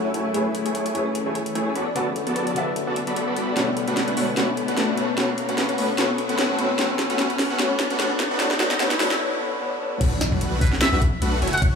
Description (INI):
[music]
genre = future bass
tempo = 149 BPM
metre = 4/4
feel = swing 54% on 16ths, half-time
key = unclear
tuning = A4 = 440 Hz
[part]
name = felt-muted upright piano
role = accompaniment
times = 0.0-10.0 s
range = B2 to F#5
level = -27 LUFS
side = left 2 dB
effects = sidechain pumping, dub echo
[part]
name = shimmering ambient pad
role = sustained chords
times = 0.0-9.2 s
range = D3 to G#5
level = -33 LUFS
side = left 2 dB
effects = chorus, built-in reverb, phaser, sidechain pumping
[part]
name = thumb-piano-like synth pluck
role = arpeggios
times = 0.0-9.1 s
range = F#4 to E5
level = -34 LUFS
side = left 4 dB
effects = none
[part]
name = supersaw chords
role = riff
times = 0.0-11.7 s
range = A3 to B5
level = -26 LUFS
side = equal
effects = sidechain pumping, low-pass filter, dub echo
[part]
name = long sustained 808-style bass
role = bass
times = 0.0-11.8 s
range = F#1 to A2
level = -31 LUFS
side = left 1 dB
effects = none
[part]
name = riser and impact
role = sound effects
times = 0.1-11.6 s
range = none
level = -30 LUFS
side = equal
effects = none
[part]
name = trap drum kit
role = drums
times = 0.1-11.7 s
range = crash cymbal, hi-hat, snare drum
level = -26 LUFS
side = equal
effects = studio reverb
[part]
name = electronic kick drum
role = drums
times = 10.0-11.7 s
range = none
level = -20 LUFS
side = left 1 dB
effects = studio reverb
[part]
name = trumpet with metal mute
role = melody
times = 10.6-11.6 s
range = B4 to F#5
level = -25 LUFS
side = equal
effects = sidechain pumping, dub echo
[sound]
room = moderate huge ambient reverb, RT60 6.5 s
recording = high-pass filter, small room ambience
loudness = -20 LUFS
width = side -6 dB against mid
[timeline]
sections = 0.0-10.0 A section; 10.0-11.8 B section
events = build-up 0.0-10.0; filter sweep on supersaw synth 0.0-10.0; filter sweep 0.0-10.0; riser 0.1-9.2; drum fill 3.6-9.2; break 9.2-10.0; drop 10.0-11.8; impact 10.0-11.6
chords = 0.3 Amaj7; 1.8 D6; 3.6 Bm7; 5.0 F#m7; 6.8 A; 8.2 D6; 10.0 Bm7